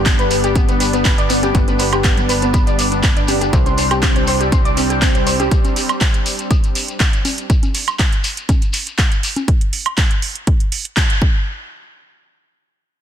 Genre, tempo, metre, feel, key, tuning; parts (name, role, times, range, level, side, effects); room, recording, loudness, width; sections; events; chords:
progressive house; 121 BPM; 4/4; straight; A4 = 440 Hz
supersaw pad; sustained chords; 0.0-7.5 s; G3 to D4; -22 LUFS; equal; sidechain pumping
tight sequencer bass; bass; 0.0-5.5 s; G1 to C2; -22 LUFS; equal; sidechain pumping
soft round pluck; arpeggios; 0.1-5.5 s; B3 to D6; -19 LUFS; equal; lush chorus, sidechain pumping, digital delay
electronic kick drum; drums; 0.1-11.3 s; -15 LUFS; equal
house drum kit; drums; 0.1-11.2 s; handclaps, hi-hat, woodblock; -21 LUFS; right 2 dB; sidechain pumping on hats, sidechain pumping on cymbals, sidechain pumping on perc
shekere; percussion; 0.1-9.5 s; -28 LUFS; left 5 dB
woodblock and congas; percussion; 0.1-9.5 s; -27 LUFS; left 3 dB; overdrive, sidechain pumping on perc
digital ambience; dense, heavily limited modern master; -14 LUFS; side -9 dB against mid
0.0-11.5 A section; 11.5-13.0 B section
drop 0.0-11.5; band accent 11.0
0.0 G; 3.5 Csus2; 7.5 N.C.